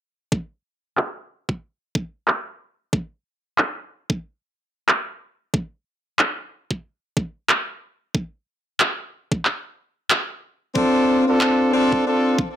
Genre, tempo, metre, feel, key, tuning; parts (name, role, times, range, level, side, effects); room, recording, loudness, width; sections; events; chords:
glitch hop; 92 BPM; 4/4; swing 58% on 16ths; D minor; A4 = 441 Hz
electronic kick drum; drums; 0.3-12.5 s; -22 LUFS; right 1 dB; overdrive, high-pass filter on kick
electronic handclaps; drums; 1.0-11.6 s; -19 LUFS; right 1 dB; overdrive, low-pass filter on snare
bright horn section; stabs; 10.8-12.4 s; C4 to A4; -16 LUFS; left 1 dB; vintage 12-bit sampler grit, sidechain pumping, digital delay
wet studio reverb, RT60 0.6 s; dark, warm production; -20 LUFS; side -11 dB against mid
0.3-12.6 A section
filter sweep on drum 0.3-12.6
0.3 N.C.; 10.8 Dm7